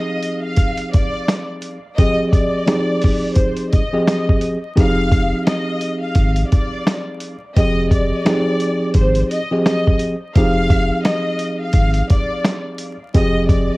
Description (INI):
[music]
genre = hip hop, boom-bap hip-hop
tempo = 86 BPM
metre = 4/4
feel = swing 58% on 16ths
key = F dorian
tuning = A4 = 440 Hz
[part]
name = warm studio violin section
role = melody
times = 0.0-13.8 s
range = C5 to F5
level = -23 LUFS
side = left 1 dB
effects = analog delay
[part]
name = mellow tine electric piano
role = accompaniment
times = 0.0-13.8 s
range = F3 to Eb5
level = -20 LUFS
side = equal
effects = medium stereo tremolo, cassette tape
[part]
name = dusty soul sampler-style drum kit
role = drums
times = 0.2-13.7 s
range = hi-hat, kick drum, snare drum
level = -16 LUFS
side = equal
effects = cassette tape
[part]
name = saturated sub bass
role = bass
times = 4.8-13.7 s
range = F1 to Ab1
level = -20 LUFS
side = equal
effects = none
[sound]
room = digital ambience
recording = home recording on cassette, vinyl crackle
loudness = -15 LUFS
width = side -22 dB against mid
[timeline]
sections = 0.0-13.8 A section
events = break 0.0-4.8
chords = 0.0 Fm7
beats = 0.59 1.28 | 1.98 2.68 3.38 4.08 | 4.77 5.47 6.17 6.87 | 7.56 8.26 8.96 9.66 | 10.35 11.05 11.75 12.45 | 13.14